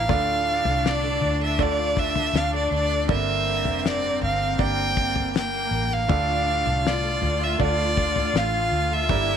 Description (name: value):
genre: pop ballad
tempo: 80 BPM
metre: 4/4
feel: straight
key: D minor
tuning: A4 = 440 Hz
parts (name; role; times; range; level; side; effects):
- clear violin; melody; 0.0-9.4 s; D5 to G5; -24 LUFS; equal; slapback echo
- clear symphonic cello section; second line; 0.0-9.4 s; Bb3 to F4; -30 LUFS; equal; none
- bright concert grand piano; accompaniment; 0.0-9.4 s; G2 to D5; -30 LUFS; right 14 dB; none
- picked steel-string acoustic guitar; arpeggios; 0.0-9.4 s; G2 to Bb4; -35 LUFS; left 5 dB; none
- vintage muted fingered electric bass; bass; 0.0-9.4 s; F1 to D2; -28 LUFS; equal; none
- damped 70s drum kit; drums; 0.1-9.3 s; kick drum, snare drum, toms; -25 LUFS; left 4 dB; none
- warm studio string section; sustained chords; 6.1-9.4 s; D3 to G4; -33 LUFS; left 1 dB; none
room: small room ambience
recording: 1960s-style stereo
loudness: -20 LUFS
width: side -8 dB against mid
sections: 0.0-9.4 A section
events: none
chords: 0.1 Dm; 3.1 Gm; 6.1 Dm